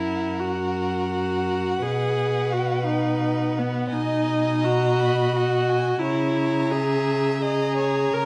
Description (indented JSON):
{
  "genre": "classical, slow romantic movement for string quartet",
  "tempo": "85 BPM",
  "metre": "3/4",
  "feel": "rubato",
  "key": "B major",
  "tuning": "A4 = 439 Hz",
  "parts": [
    { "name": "clear violin", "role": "melody", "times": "0.0-8.3 s", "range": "F#5 to B5", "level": "-36 LUFS", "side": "equal", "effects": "none" },
    { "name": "clear violin", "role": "second line", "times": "0.0-8.3 s", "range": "A#4 to E5", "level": "-34 LUFS", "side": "equal", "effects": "none" },
    { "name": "clear viola", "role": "accompaniment", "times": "0.0-8.3 s", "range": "B3 to A#4", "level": "-26 LUFS", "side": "equal", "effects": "none" },
    { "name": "rich cello", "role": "bass", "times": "0.0-8.3 s", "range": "F#2 to C#3", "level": "-29 LUFS", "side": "equal", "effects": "none" }
  ],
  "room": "moderate recital hall reverb, RT60 1.4 s",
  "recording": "dark, warm production",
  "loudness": "-23 LUFS",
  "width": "mono",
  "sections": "0.0-8.3 A section",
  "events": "none",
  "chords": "0.0 F#; 1.8 B; 3.9 G#m/B; 6.0 A#m7b5/C#"
}